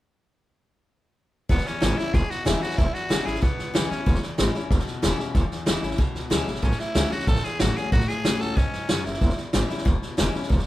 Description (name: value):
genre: rockabilly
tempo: 187 BPM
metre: 4/4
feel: straight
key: E major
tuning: A4 = 442 Hz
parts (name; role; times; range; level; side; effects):
- breathy tenor saxophone; melody; 1.5-4.2, 6.6-9.4 s; B3 to A4; -30 LUFS; equal; none
- picked steel-string acoustic guitar; accompaniment; 1.5-10.7 s; E2 to F#4; -30 LUFS; left 3 dB; none
- upright bass; bass; 1.5-10.6 s; E1 to F#2; -28 LUFS; equal; none
- vintage drum kit; drums; 1.5-10.6 s; hi-hat, kick drum, snare drum; -23 LUFS; equal; none
room: light reverb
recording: band playing live in one room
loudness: -21 LUFS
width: side -16 dB against mid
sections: 1.5-10.7 A section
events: none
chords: 1.5 E6; 6.6 A6; 9.2 E6